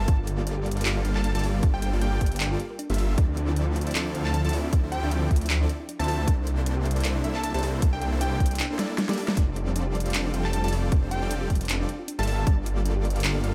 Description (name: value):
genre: future bass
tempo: 155 BPM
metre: 4/4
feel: swing 55% on 16ths, half-time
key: F major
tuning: A4 = 441 Hz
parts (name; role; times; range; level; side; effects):
- plucky unison lead; melody; 0.0-12.6 s; G5 to A5; -37 LUFS; equal; sidechain pumping, delay
- thumb-piano-like synth pluck; arpeggios; 0.0-13.5 s; D4 to F5; -39 LUFS; equal; chorus, sidechain pumping, delay
- supersaw chords; riff; 0.0-13.5 s; F3 to G5; -34 LUFS; equal; sidechain pumping
- detuned saw bass; bass; 0.0-13.5 s; F1 to D2; -29 LUFS; equal; chorus, sidechain pumping
- dubstep drum kit; drums; 0.1-13.5 s; handclaps, hi-hat, snare drum; -34 LUFS; equal; none
- electronic kick drum; drums; 0.1-12.6 s; none; -24 LUFS; equal; none
room: little or no reverb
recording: none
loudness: -26 LUFS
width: mono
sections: 0.0-13.5 A section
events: drum fill 8.8-9.4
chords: 0.0 Gm9; 3.2 Dm9; 6.3 C13; 9.4 F69; 12.3 Gm9